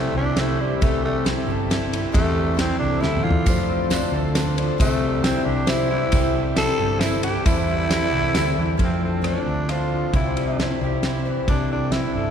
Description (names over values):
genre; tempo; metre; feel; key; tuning
folk rock and heartland rock; 135 BPM; 3/4; straight; A minor; A4 = 440 Hz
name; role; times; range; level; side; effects
growling tenor saxophone; melody; 0.0-12.3 s; G3 to A4; -26 LUFS; equal; none
picked twelve-string acoustic guitar; accompaniment; 0.0-12.3 s; C3 to C5; -28 LUFS; left 4 dB; none
bright tonewheel organ; sustained chords; 0.0-8.8 s; G4 to C6; -37 LUFS; left 1 dB; none
electric guitar through a small old amp; riff; 0.0-12.3 s; C3 to A4; -27 LUFS; equal; none
hollow-body short-scale picked electric bass; bass; 0.0-12.3 s; G1 to F2; -25 LUFS; right 1 dB; none
damped 70s drum kit; drums; 0.4-12.0 s; kick drum, ride cymbal, rim click, snare drum, toms; -24 LUFS; equal; none
tambourine; percussion; 3.5-8.5 s; none; -40 LUFS; right 9 dB; none
room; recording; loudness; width
wet cathedral reverb, RT60 4.5 s; recorded in a church or concert hall; -19 LUFS; side -8 dB against mid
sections
0.0-8.8 A section; 8.8-12.3 B section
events
tenor saxophone solo 0.0-8.8; drum fill 3.0-3.5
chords
0.0 C; 0.8 Am7; 3.5 F6; 4.8 C; 6.1 Am7; 8.8 F6; 10.1 C; 11.5 Am7